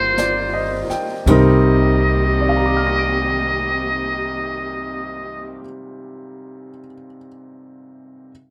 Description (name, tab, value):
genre	jazz ballad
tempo	53 BPM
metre	4/4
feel	swing 67% on 8ths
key	C minor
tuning	A4 = 440 Hz
part	trumpet with metal mute	melody	0.0-5.6 s	C5 to Eb5	-24 LUFS	equal	none
part	clear baby grand piano	accompaniment	0.0-8.3 s	C3 to D7	-23 LUFS	equal	none
part	warm studio cello section	sustained chords	0.0-5.6 s	Eb3 to G4	-31 LUFS	equal	none
part	upright bass	bass	0.0-5.6 s	G1 to C2	-24 LUFS	equal	none
part	jazz brush drum kit	drums	0.2-1.6 s	hi-hat, kick drum, snare drum, splash cymbal, toms	-23 LUFS	equal	none
room	little or no reverb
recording	rough home demo mix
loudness	-18 LUFS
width	mono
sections	0.0-1.3 A section; 1.3-5.8 B section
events	slowing down 0.0-1.3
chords	0.0 Cm7